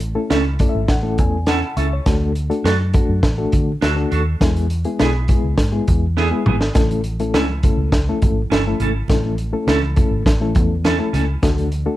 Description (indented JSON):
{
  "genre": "uptempo 1960s-style soul",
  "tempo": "102 BPM",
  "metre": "4/4",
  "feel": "straight",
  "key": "A major",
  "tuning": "A4 = 442 Hz",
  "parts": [
    { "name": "vintage muted fingered electric bass", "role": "bass", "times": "0.0-11.9 s", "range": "G1 to D3", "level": "-20 LUFS", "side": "equal", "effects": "none" },
    { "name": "crunchy breakbeat drum kit", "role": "drums", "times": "0.0-11.9 s", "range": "hi-hat, kick drum, snare drum, toms", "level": "-18 LUFS", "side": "equal", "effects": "none" },
    { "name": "reed electric piano", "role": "accompaniment", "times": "0.2-12.0 s", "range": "G#3 to C#6", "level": "-23 LUFS", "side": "left 3 dB", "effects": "fast tremolo" },
    { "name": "clean electric guitar", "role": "stabs", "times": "0.3-11.2 s", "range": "B3 to A4", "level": "-23 LUFS", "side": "right 5 dB", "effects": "spring reverb" },
    { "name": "congas", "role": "percussion", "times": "6.8-11.9 s", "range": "none", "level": "-31 LUFS", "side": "right 1 dB", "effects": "none" }
  ],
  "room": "light reverb",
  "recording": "dark, warm production",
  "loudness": "-15 LUFS",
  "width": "side -15 dB against mid",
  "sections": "0.0-12.0 A section",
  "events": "reed electric piano fill 0.3-2.1; drum fill 6.2-6.7",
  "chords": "0.0 A; 2.1 D; 4.4 E; 6.7 A; 11.4 D"
}